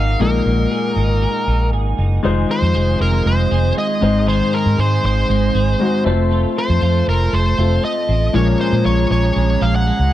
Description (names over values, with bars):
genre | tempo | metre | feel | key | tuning
pop | 118 BPM | 4/4 | straight | unclear | A4 = 437 Hz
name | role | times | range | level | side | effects
smooth overdriven lead guitar | melody | 0.0-10.1 s | Bb4 to Gb5 | -21 LUFS | equal | slapback echo
warm grand piano | accompaniment | 0.0-10.1 s | Ab2 to C5 | -20 LUFS | left 5 dB | none
flute section | sustained chords | 0.0-10.1 s | Ab4 to Eb6 | -29 LUFS | left 1 dB | none
twelve-string electric guitar | riff | 0.0-10.1 s | Eb3 to Ab4 | -24 LUFS | right 8 dB | ensemble chorus, slapback echo
vintage muted fingered electric bass | bass | 0.0-10.1 s | F1 to Bb2 | -16 LUFS | equal | none
room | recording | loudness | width
little or no reverb | dry, close 1970s-style studio recording | -14 LUFS | side -13 dB against mid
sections
0.0-2.2 A section; 2.2-10.1 B section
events
none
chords
0.0 Absus2; 2.2 Fm7; 4.0 Ab; 6.1 F; 8.3 Bbm7